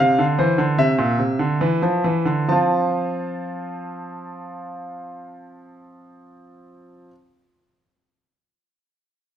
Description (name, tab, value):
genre	classical, baroque-style two-part invention for grand piano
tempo	44-53 BPM (dotted quarters)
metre	6/8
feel	straight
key	F major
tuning	A4 = 444 Hz
part	clear concert grand piano	solo	0.0-7.1 s	Bb2 to A5	-19 LUFS	right 1 dB	none
room	moderate recital hall reverb, RT60 1.6 s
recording	close, detailed microphones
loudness	-18 LUFS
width	side -10 dB against mid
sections	0.0-2.5 A section; 2.5-7.9 B section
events	slowing down 0.0-2.5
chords	0.0 F5/C; 1.2 C; 2.5 F